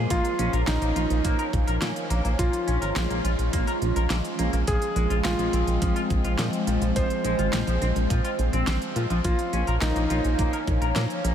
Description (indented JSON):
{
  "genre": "synthwave",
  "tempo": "105 BPM",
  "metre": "4/4",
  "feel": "straight",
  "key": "Bb minor",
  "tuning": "A4 = 440 Hz",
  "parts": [
    { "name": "phased analog pad", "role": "sustained chords", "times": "0.0-11.3 s", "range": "F3 to Db4", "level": "-30 LUFS", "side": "equal", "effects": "phaser, chorus, sidechain pumping" },
    { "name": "chorused synth bass", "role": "bass", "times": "0.0-11.3 s", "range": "Ab1 to Bb2", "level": "-25 LUFS", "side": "equal", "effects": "none" },
    { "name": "warm electric grand piano", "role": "melody", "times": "0.1-10.6 s", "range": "Eb4 to C5", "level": "-29 LUFS", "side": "right 1 dB", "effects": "tape echo" },
    { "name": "clean electric guitar", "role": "riff", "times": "0.1-11.3 s", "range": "F3 to Bb4", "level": "-33 LUFS", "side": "left 3 dB", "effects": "wide subtle chorus, analog delay" },
    { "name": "electronic kick drum", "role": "drums", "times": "0.1-10.8 s", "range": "none", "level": "-26 LUFS", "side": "equal", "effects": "small room ambience" },
    { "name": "pop drum kit", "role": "drums", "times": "0.1-11.3 s", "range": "hi-hat, snare drum", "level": "-32 LUFS", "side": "equal", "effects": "small room ambience" }
  ],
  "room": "moderate huge ambient reverb, RT60 8.0 s",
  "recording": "dreamy mix soaked in reverb",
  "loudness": "-22 LUFS",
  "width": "side -9 dB against mid",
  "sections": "0.0-11.3 A section",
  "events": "none",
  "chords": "0.1 Bbm; 4.7 Fm/Bb; 9.2 Bbm"
}